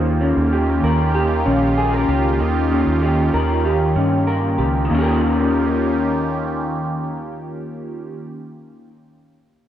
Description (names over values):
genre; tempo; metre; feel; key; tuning
dream pop; 96 BPM; 4/4; straight; Eb mixolydian; A4 = 440 Hz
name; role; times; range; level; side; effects
phased analog pad; sustained chords; 0.0-8.2 s; Eb3 to G4; -22 LUFS; right 2 dB; phaser, chorus
electric guitar through a small old amp; arpeggios; 0.0-9.0 s; Eb3 to Bb4; -20 LUFS; left 2 dB; analog chorus, analog delay
vintage muted fingered electric bass; bass; 0.0-8.9 s; Bb1 to G2; -22 LUFS; right 1 dB; none
room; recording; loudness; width
light reverb; dry, gritty hardware recording; -16 LUFS; side -11 dB against mid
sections
0.0-4.9 A section; 4.9-7.4 B section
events
none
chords
0.0 Eb7